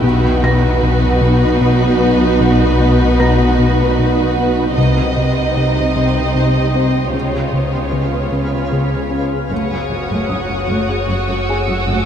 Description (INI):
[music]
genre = cinematic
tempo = 76 BPM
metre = 3/4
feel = straight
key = unclear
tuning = A4 = 439 Hz
[part]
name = rich studio violin section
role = melody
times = 0.0-12.1 s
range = B4 to Eb5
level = -23 LUFS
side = equal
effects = none
[part]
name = warm studio violin section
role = second line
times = 0.0-12.1 s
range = Eb4 to F#4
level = -22 LUFS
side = right 2 dB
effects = none
[part]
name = warm studio viola section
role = accompaniment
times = 0.0-12.1 s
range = C#3 to D#4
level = -23 LUFS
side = right 2 dB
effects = none
[part]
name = twinkling granular texture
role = sustained chords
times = 0.0-12.1 s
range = F#4 to F#5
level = -23 LUFS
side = equal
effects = built-in reverb
[part]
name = fat analog bass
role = riff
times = 0.0-9.3 s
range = B2 to C#4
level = -19 LUFS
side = left 2 dB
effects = none
[part]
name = rich studio double bass section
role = bass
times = 0.0-11.9 s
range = F#1 to C#2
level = -20 LUFS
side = equal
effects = none
[part]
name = warm studio cello section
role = bass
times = 0.0-11.9 s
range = F#2 to C#3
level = -21 LUFS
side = equal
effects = none
[part]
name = metallic inharmonic drone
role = drone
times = 0.0-12.1 s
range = F#1 to C#2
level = -24 LUFS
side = equal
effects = chorus, built-in reverb
[part]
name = felt-muted upright piano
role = texture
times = 0.0-12.1 s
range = G#4 to A#6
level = -29 LUFS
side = left 1 dB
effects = none
[part]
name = rich symphonic violin section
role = texture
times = 9.5-12.1 s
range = C#6 to E6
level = -25 LUFS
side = right 1 dB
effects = none
[sound]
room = moderate huge ambient reverb, RT60 7.6 s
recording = in a vast, echoing space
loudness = -13 LUFS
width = side -8 dB against mid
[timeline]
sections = 0.0-9.5 A section; 9.5-12.1 B section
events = none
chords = 0.0 B; 4.8 Cm; 7.1 C#7; 9.5 F#m